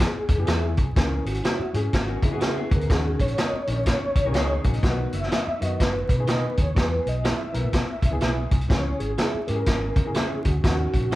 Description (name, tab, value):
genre	uptempo 1960s-style soul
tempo	124 BPM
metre	4/4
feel	swing 61% on 8ths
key	unclear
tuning	A4 = 442 Hz
part	mellow tonewheel organ	melody	0.0-11.2 s	F#4 to E5	-30 LUFS	equal	chorus vibrato, slow rotary speaker
part	clear upright piano	accompaniment	0.0-11.2 s	D#3 to A#4	-32 LUFS	left 2 dB	none
part	vintage muted fingered electric bass	bass	0.0-11.2 s	F#1 to C#3	-27 LUFS	equal	none
part	vintage drum kit	drums	0.0-11.2 s	hi-hat, kick drum, snare drum	-24 LUFS	equal	none
part	electric guitar through a small old amp	stabs	0.5-11.2 s	C#4 to E5	-32 LUFS	right 4 dB	none
part	electric guitar through a small old amp	riff	2.1-5.0 s	F#3 to C#5	-34 LUFS	left 4 dB	warbly pitch drift
room	light reverb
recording	band playing live in one room, vinyl crackle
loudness	-21 LUFS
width	side -16 dB against mid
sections	0.0-11.2 A section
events	none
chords	0.0 E; 1.0 C#m; 2.9 D#m7; 4.8 B; 6.8 E; 8.7 C#m; 10.6 D#m7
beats	0.48 | 0.96 1.45 1.93 2.42 | 2.90 3.38 3.87 4.35 | 4.83 5.32 5.80 6.29 | 6.77 7.25 7.74 8.22 | 8.70 9.19 9.67 10.15 | 10.64 11.12